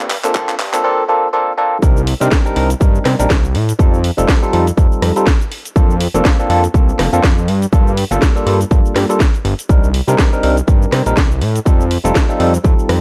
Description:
filtered disco house; 122 BPM; 4/4; swing 57% on 16ths; C dorian; A4 = 439 Hz
bell-like tine electric piano; accompaniment; 0.0-13.0 s; G3 to Bb4; -19 LUFS; equal; phaser, vintage 12-bit sampler grit, sidechain pumping, low-pass filter
fat analog bass; bass; 0.0-13.0 s; F1 to C3; -19 LUFS; equal; sidechain pumping, high-pass filter, low-pass filter
house drum kit; drums; 0.0-13.0 s; handclaps, hi-hat, rim click, shaker, snare drum; -23 LUFS; equal; sidechain pumping on perc, sidechain pumping on hats
electronic kick drum; drums; 0.3-12.8 s; -15 LUFS; equal
little or no reverb; dry, gritty hardware recording, high-pass filter; -14 LUFS; mono
0.0-1.8 A section; 1.8-13.0 B section
build-up 0.0-1.8; drum fill 0.0-0.8; filter sweep 0.0-1.8; drop 1.8-13.0
0.0 Gm9; 1.8 Cm9; 3.8 F9; 5.8 Bbmaj9/F; 7.5 Gm9; 9.7 Cm9; 11.7 F9
0.35 0.84 1.33 | 1.83 2.32 2.81 3.30 | 3.79 4.29 4.78 5.27 | 5.76 6.25 6.74 7.24 | 7.73 8.22 8.71 9.20 | 9.69 10.19 10.68 11.17 | 11.66 12.15 12.64

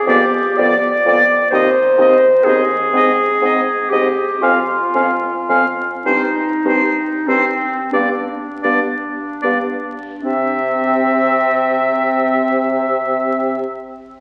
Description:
classical, slow romantic movement for wind quintet; 24-44 BPM (dotted quarters); 6/8; rubato; A4 = 439 Hz
clear clarinet; accompaniment; 0.0-13.6 s; C4 to D5; -19 LUFS; equal
mellow hollow concert flute; melody; 0.1-13.6 s; F5 to Ab5; -30 LUFS; equal
bright oboe; second line; 0.1-13.6 s; C5 to F5; -21 LUFS; equal
mellow French horn; accompaniment; 0.1-13.6 s; B3 to C4; -27 LUFS; equal
warm bassoon; bass; 0.1-13.6 s; Eb2 to C3; -24 LUFS; equal
wet concert hall reverb, RT60 2.0 s; very old 78 rpm record, vinyl crackle, faint mains hum; -16 LUFS; mono
0.0-10.2 A section; 10.2-14.2 B section
slowing down 1.5-10.2
0.1 G7/F; 1.5 Cm/Eb; 2.9 Abmaj7; 4.4 Fm; 6.1 Cm/G; 7.9 G7; 10.2 C
| 0.07 1.52 | 2.93 4.42 | 6.05 7.93 | 10.24 12.49

